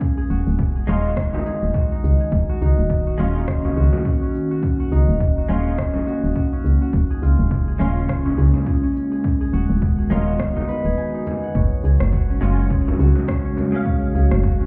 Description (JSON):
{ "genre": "organic downtempo", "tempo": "104 BPM", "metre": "4/4", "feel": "swing 57% on 16ths", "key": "Eb minor", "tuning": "A4 = 440 Hz", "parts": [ { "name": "warbly tape-like pad", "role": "sustained chords", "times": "0.0-14.7 s", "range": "Db3 to F#4", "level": "-28 LUFS", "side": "equal", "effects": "chorus, built-in reverb, sidechain pumping" }, { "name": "concert harp", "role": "arpeggios", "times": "0.0-14.7 s", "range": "Db4 to G#5", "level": "-28 LUFS", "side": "equal", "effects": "tape echo" }, { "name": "electronic cabasa and rim click", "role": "drums", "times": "0.0-14.7 s", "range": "none", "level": "-36 LUFS", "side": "equal", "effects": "overdrive" }, { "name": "electronic kick drum", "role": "drums", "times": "0.0-14.6 s", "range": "none", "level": "-24 LUFS", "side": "equal", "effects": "overdrive" }, { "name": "woody FM bass", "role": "bass", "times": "0.3-14.7 s", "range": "D#1 to Db2", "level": "-21 LUFS", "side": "equal", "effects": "sidechain pumping" }, { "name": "direct-recorded clean electric guitar", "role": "accompaniment", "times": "0.9-14.7 s", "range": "G#3 to F5", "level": "-34 LUFS", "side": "equal", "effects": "ensemble chorus, sidechain pumping, tape echo" }, { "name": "frame drum", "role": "percussion", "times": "1.3-13.7 s", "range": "none", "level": "-31 LUFS", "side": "equal", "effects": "none" } ], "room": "light reverb", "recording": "heard muffled through a wall, club reverb, EQ", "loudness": "-20 LUFS", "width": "mono", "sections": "0.0-11.6 A section; 11.6-14.7 B section", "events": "break 11.0-11.6", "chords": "0.0 B6/D#; 2.3 Ebm7; 9.2 B6/D#; 11.6 Gbsus2" }